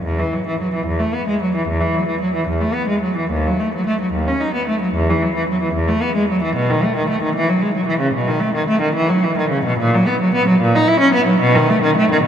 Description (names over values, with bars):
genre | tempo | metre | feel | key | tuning
classical, baroque-style suite movement for unaccompanied cello | 74 BPM (dotted quarters) | 12/8 | rubato | unclear | A4 = 439 Hz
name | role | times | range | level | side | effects
rich cello | solo | 0.0-12.3 s | D#2 to E4 | -15 LUFS | equal | none
room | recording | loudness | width
wet cathedral reverb, RT60 6.2 s | in a vast, echoing space | -15 LUFS | side -8 dB against mid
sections
0.0-12.3 A section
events
none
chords
none